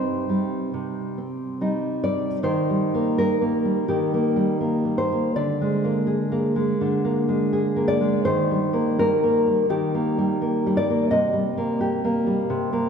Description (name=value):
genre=romantic piece for solo classical guitar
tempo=83 BPM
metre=4/4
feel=uneven beats, rubato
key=Eb major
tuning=A4 = 439 Hz
part: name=nylon-string guitar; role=solo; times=0.0-12.9 s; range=C3 to Eb5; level=-20 LUFS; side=equal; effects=none
room=wet church reverb, RT60 3.4 s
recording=recorded in a church or concert hall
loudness=-20 LUFS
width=side -6 dB against mid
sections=0.0-2.4 A section; 2.4-12.9 B section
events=none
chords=0.0 Cm; 2.4 Eb; 5.3 Bb7/D; 8.2 Eb; 11.1 Cm7